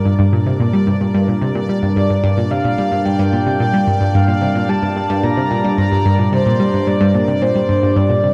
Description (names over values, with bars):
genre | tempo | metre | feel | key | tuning
ambient, sequencer-driven space music | 110 BPM | 4/4 | straight | G minor | A4 = 440 Hz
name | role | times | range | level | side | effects
sweeping resonant pad | sustained chords | 0.0-8.3 s | G3 to Bb4 | -23 LUFS | equal | chorus
bubbling stepped-filter texture | texture | 0.0-8.3 s | D5 | -34 LUFS | equal | chorus, built-in reverb
analog pluck | riff | 0.1-8.3 s | G2 to G3 | -18 LUFS | equal | chorus, phaser, tape echo
breathy flute-like synth lead | melody | 2.0-8.3 s | C5 to Bb5 | -22 LUFS | equal | lush chorus, tape echo
room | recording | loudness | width
wet huge ambient reverb, RT60 7.2 s | dark, warm production | -16 LUFS | mono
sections
0.0-8.3 A section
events
fade-in on analog synth pad 0.0-8.3; fade-in on synth texture 0.0-8.3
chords
0.0 Gm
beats
0.33 0.87 1.42 | 1.96 2.51 3.05 3.60 | 4.14 4.69 5.24 5.78 | 6.33 6.87 7.42 7.96